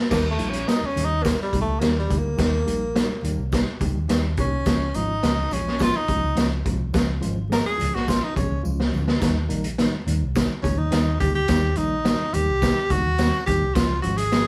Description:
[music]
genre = uptempo 1960s-style soul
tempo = 106 BPM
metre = 4/4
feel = straight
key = Eb mixolydian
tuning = A4 = 438 Hz
[part]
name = breathy tenor saxophone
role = melody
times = 0.1-14.5 s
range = G3 to Bb4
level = -27 LUFS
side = equal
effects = none
[part]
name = mellow tine electric piano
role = accompaniment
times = 0.1-14.5 s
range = Eb3 to Bb4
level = -31 LUFS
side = equal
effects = none
[part]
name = vintage muted fingered electric bass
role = bass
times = 0.1-14.4 s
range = Ab1 to Eb2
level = -28 LUFS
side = equal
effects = none
[part]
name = raw garage drum kit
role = drums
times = 0.1-14.5 s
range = crash cymbal, hi-hat, kick drum, snare drum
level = -26 LUFS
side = equal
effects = none
[part]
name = congas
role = percussion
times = 0.1-14.2 s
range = none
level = -41 LUFS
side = equal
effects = none
[part]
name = tambourine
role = percussion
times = 0.1-14.5 s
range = none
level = -49 LUFS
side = equal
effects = none
[sound]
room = moderate studio reverb, RT60 0.8 s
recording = band playing live in one room, vinyl crackle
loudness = -23 LUFS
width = mono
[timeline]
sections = 0.1-14.5 A section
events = tenor saxophone solo 0.1-14.5; drum fill 8.6-9.2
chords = 0.1 Eb; 4.7 Db; 9.2 Eb; 13.8 Db

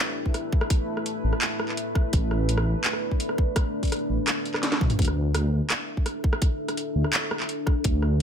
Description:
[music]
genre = half-time drum and bass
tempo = 168 BPM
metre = 4/4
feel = half-time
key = unclear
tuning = A4 = 441 Hz
[part]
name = deep dark ambient pad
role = sustained chords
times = 0.0-8.2 s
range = A3 to E5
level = -30 LUFS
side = equal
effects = chorus, built-in reverb, sidechain pumping
[part]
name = drum and bass drum kit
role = drums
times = 0.3-8.1 s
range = handclaps, hi-hat, rim click, snare drum, toms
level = -27 LUFS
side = equal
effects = none
[part]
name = electronic kick drum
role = drums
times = 0.3-7.9 s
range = none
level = -23 LUFS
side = equal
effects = none
[part]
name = dark detuned saw bass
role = bass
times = 1.2-8.2 s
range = A1 to D2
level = -23 LUFS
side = equal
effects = none
[sound]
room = light reverb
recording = none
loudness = -23 LUFS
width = side -8 dB against mid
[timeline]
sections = 0.0-5.0 A section; 5.0-8.2 A section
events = drop 0.0-5.0, 5.0-8.2; drum fill 4.6-5.0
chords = 0.0 A5; 5.0 Dsus2

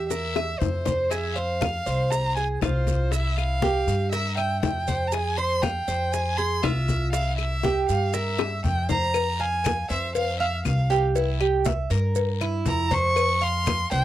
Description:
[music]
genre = latin, Cuban son and guajira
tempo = 120 BPM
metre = 4/4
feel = straight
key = F harmonic minor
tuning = A4 = 440 Hz
[part]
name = warm violin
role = melody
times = 0.0-14.0 s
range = C5 to Db6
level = -27 LUFS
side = right 1 dB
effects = none
[part]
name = Cuban tres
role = arpeggios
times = 0.0-14.0 s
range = E4 to F5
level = -28 LUFS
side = right 4 dB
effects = none
[part]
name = upright bass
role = bass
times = 0.0-14.0 s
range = C2 to G2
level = -26 LUFS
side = equal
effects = none
[part]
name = bongos and cowbell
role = percussion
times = 0.1-14.0 s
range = none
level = -30 LUFS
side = left 8 dB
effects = none
[part]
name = congas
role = percussion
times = 0.1-14.0 s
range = none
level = -30 LUFS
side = left 3 dB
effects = none
[part]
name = guiro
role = percussion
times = 0.1-14.0 s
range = none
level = -38 LUFS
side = left 22 dB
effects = none
[part]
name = maracas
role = percussion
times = 0.1-14.0 s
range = none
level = -39 LUFS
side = right 25 dB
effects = none
[part]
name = claves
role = percussion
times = 0.4-13.9 s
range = none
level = -36 LUFS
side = left 26 dB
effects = none
[sound]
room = light reverb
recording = dry, close 1970s-style studio recording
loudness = -22 LUFS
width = side -13 dB against mid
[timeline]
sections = 0.0-9.1 A section; 9.1-14.0 B section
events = drum fill 0.1-1.1, 8.4-9.1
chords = 0.0 C7; 1.1 Fm; 3.1 C7; 5.1 Fm; 7.1 C7; 9.1 Fm; 11.2 C7; 13.2 F5

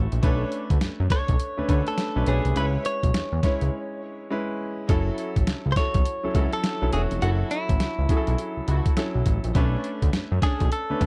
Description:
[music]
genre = R&B, new jack swing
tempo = 103 BPM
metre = 4/4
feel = swing 62% on 16ths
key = unclear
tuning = A4 = 439 Hz
[part]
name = clear concert grand piano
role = accompaniment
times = 0.0-11.1 s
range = F#3 to E5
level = -33 LUFS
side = equal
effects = none
[part]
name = fat analog bass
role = bass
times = 0.0-11.1 s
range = E1 to F#2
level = -27 LUFS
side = equal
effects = none
[part]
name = boom bap sampler-style drum kit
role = drums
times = 0.1-11.1 s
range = hi-hat, kick drum, snare drum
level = -26 LUFS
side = equal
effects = none
[part]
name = muted symphonic string section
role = stabs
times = 0.2-11.1 s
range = C#4 to C#5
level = -37 LUFS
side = equal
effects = none
[part]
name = direct-recorded clean electric guitar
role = melody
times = 1.1-11.1 s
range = E4 to C#5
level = -32 LUFS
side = equal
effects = none
[sound]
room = little or no reverb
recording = dry, close 1970s-style studio recording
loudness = -24 LUFS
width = mono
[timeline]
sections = 0.0-11.1 A section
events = break 3.7-4.9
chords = 0.2 Bm9; 2.6 C#m7; 4.9 F#m7; 9.6 Bm9

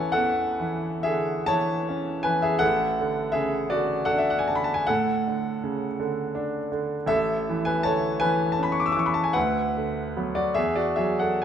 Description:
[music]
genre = classical, romantic nocturne for solo piano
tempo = 43-57 BPM (dotted quarters)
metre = 12/8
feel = rubato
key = A major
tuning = A4 = 440 Hz
[part]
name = clear grand piano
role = solo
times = 0.0-11.4 s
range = A1 to E6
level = -22 LUFS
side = equal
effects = none
[sound]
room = moderate recital hall reverb, RT60 1.4 s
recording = none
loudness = -22 LUFS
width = side -8 dB against mid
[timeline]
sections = 0.0-11.4 A section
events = none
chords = 0.0 A; 9.4 Bm/D; 10.6 Eadd9

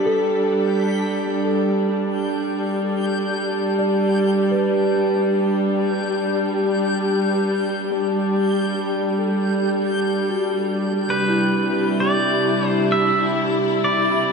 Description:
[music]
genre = ambient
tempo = free time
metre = none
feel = none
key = unclear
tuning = A4 = 440 Hz
[part]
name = dark studio string section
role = sustained chords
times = 0.0-14.3 s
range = C3 to A4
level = -19 LUFS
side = equal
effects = none
[part]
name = large celesta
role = arpeggios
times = 0.0-14.3 s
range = E4 to D5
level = -28 LUFS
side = equal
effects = ping-pong delay
[part]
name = backwards swelling texture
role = texture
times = 0.0-14.3 s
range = G6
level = -33 LUFS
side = left 3 dB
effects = built-in reverb
[part]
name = pedal steel guitar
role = melody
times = 11.1-14.3 s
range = B4 to E5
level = -23 LUFS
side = equal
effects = ping-pong delay
[sound]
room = wet cathedral reverb, RT60 4.9 s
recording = nothing above 10.4 kHz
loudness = -18 LUFS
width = side -5 dB against mid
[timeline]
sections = 0.0-14.3 A section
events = fade-out on celesta 0.0-14.3; fade-out on synth texture 0.0-14.3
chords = 0.0 G; 11.1 C

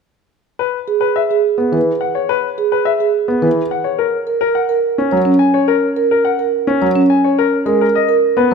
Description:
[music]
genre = classical, minimalist pattern music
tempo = 106 BPM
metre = 3/4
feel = straight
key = C# dorian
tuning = A4 = 440 Hz
[part]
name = clear baby grand piano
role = melody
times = 0.6-8.5 s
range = A#4 to G#5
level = -18 LUFS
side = left 9 dB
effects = none
[part]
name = marimba with soft mallets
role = arpeggios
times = 0.9-8.5 s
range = C#4 to C#5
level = -15 LUFS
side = right 5 dB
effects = none
[part]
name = warm concert grand piano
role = accompaniment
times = 1.6-8.5 s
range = E3 to C#4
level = -18 LUFS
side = left 2 dB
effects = none
[sound]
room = moderate recital hall reverb, RT60 1.5 s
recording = minimal, uncompressed stereo recording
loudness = -13 LUFS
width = side -5 dB against mid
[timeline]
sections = 0.6-8.5 A section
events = none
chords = 0.6 C#m7 (rootless); 4.0 F#; 7.4 G#madd9

